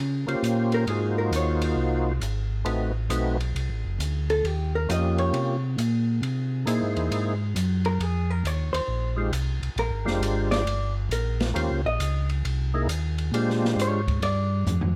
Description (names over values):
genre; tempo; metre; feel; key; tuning
soul jazz organ trio; 135 BPM; 4/4; swing 66% on 8ths; Eb mixolydian; A4 = 438 Hz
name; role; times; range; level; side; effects
mellow tonewheel organ; bass; 0.0-15.0 s; F1 to Db3; -28 LUFS; equal; slow rotary speaker
percussive tonewheel organ; melody; 0.3-14.0 s; Ab3 to C5; -30 LUFS; equal; slow rotary speaker, overdrive, chorus vibrato
open jazz drum kit; drums; 0.3-15.0 s; hi-hat, kick drum, ride cymbal, snare drum, toms; -36 LUFS; equal; none
hollow-body jazz guitar; accompaniment; 0.7-14.9 s; G4 to Eb5; -32 LUFS; equal; none
room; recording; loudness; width
light reverb; none; -26 LUFS; mono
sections
0.0-15.0 A section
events
hollow-body jazz guitar solo 0.0-15.0; drum fill 14.7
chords
0.0 Eb13 (rootless); 0.9 Ab13; 2.7 Adim7; 4.4 Eb13; 6.2 C7alt; 8.0 Fm7; 9.8 Bb13; 11.6 Eb13; 12.4 C7alt; 13.3 Bb13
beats
0.44 | 0.88 1.33 1.77 2.22 | 2.66 3.11 3.56 4.00 | 4.45 4.89 5.34 5.78 | 6.23 6.67 7.12 7.56 | 8.01 8.45 8.89 9.34 | 9.78 10.23 10.67 11.11 | 11.56 12.00 12.45 12.89 | 13.33 13.78 14.22 14.66